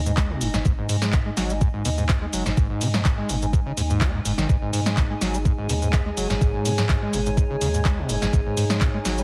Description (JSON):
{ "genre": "acid house", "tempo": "125 BPM", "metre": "4/4", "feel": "swing 53% on 16ths", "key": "unclear", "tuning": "A4 = 438 Hz", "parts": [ { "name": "saturated sub bass", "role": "bass", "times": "0.0-9.2 s", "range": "F#1 to G#2", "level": "-30 LUFS", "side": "equal", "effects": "sidechain pumping" }, { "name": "warbly tape-like pad", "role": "texture", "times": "0.0-9.2 s", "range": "G#3 to G#5", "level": "-34 LUFS", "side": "equal", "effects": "chorus, built-in reverb, sidechain pumping" }, { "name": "overdriven acid bass", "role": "riff", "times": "0.1-9.2 s", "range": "G#2 to G#3", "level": "-29 LUFS", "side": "equal", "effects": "distortion, tube saturation, subtle chorus, sidechain pumping" }, { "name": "punchy analog drum machine", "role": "drums", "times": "0.1-9.2 s", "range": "handclaps, hi-hat, shaker, snare drum", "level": "-30 LUFS", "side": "equal", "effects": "none" }, { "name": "electronic kick drum", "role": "drums", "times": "0.2-8.9 s", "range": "none", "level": "-23 LUFS", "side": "equal", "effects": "overdrive" }, { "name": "dark analog pad", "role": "sustained chords", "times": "4.5-9.2 s", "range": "G#4", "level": "-33 LUFS", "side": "equal", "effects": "chorus, sidechain pumping" } ], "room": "light reverb, digital ambience", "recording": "heavily compressed radio sound", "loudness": "-23 LUFS", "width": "mono", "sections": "0.0-9.2 A section", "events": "none", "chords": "0.0 G#5", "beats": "0.17 | 0.65 1.13 1.61 2.09 | 2.57 3.05 3.53 4.01 | 4.49 4.97 5.45 5.93 | 6.41 6.89 7.37 7.85 | 8.33 8.81" }